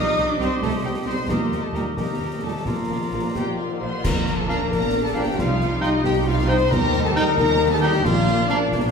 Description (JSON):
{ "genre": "cinematic, heroic adventure film score", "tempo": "90 BPM (dotted quarters)", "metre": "6/8", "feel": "straight", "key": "Bb major", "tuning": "A4 = 435 Hz", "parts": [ { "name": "bright clarinet", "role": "second line", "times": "0.0-8.6 s", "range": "D4 to G4", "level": "-32 LUFS", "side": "left 1 dB", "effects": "none" }, { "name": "dark studio violin section", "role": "second line", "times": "0.0-8.9 s", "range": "D4 to Eb6", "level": "-34 LUFS", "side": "left 2 dB", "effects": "none" }, { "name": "hollow silver concert flute", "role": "second line", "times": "0.0-8.6 s", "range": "G5 to Eb6", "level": "-36 LUFS", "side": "left 1 dB", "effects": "none" }, { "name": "warm cor anglais", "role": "second line", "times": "0.0-8.6 s", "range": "D5 to G5", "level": "-34 LUFS", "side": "right 2 dB", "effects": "none" }, { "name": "rich symphonic viola section", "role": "accompaniment", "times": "0.0-8.9 s", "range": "G3 to G4", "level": "-32 LUFS", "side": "right 1 dB", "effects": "none" }, { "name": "concert harp", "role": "arpeggios", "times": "0.0-8.9 s", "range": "Bb2 to Eb6", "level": "-32 LUFS", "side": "left 7 dB", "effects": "none" }, { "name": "clear trumpet", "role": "stabs", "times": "0.0-8.7 s", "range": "D4 to Eb5", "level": "-28 LUFS", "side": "right 1 dB", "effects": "none" }, { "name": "rich symphonic cello section", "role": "bass", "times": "0.0-8.9 s", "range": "Bb2 to Eb4", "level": "-28 LUFS", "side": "right 3 dB", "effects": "none" }, { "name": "rich symphonic double bass section", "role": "bass", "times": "0.0-8.9 s", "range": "Bb1 to Eb2", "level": "-27 LUFS", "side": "right 2 dB", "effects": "none" }, { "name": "clear symphonic violin section", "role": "melody", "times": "0.2-8.7 s", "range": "Bb4 to C6", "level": "-31 LUFS", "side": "left 3 dB", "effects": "none" }, { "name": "concert snare drum, concert bass drum and clash cymbals", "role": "drums", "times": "0.2-8.9 s", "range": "none", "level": "-28 LUFS", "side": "left 1 dB", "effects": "none" }, { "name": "dark trombone section", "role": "sustained chords", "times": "0.4-8.6 s", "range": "G2 to Eb4", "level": "-32 LUFS", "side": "right 4 dB", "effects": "none" }, { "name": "mellow French horn section", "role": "sustained chords", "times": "0.4-8.7 s", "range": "D4 to C5", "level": "-25 LUFS", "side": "left 6 dB", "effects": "none" }, { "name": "cymbal swell, clash cymbals and concert bass drum", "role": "percussion", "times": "1.3-4.9 s", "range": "none", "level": "-30 LUFS", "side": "equal", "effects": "none" } ], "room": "wet recital hall reverb, RT60 1.7 s", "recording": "recorded in a church or concert hall", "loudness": "-19 LUFS", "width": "side -6 dB against mid", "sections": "0.0-4.0 A section; 4.0-8.9 A section", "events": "band accent 4.0-4.5", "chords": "0.0 Cm; 1.3 Eb; 2.7 Bb; 5.4 Cm; 6.7 Eb; 8.1 Bb", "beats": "0.62 | 1.29 1.97 | 2.66 3.35 | 4.03 4.71 | 5.38 6.05 | 6.72 7.38 | 8.05 8.72" }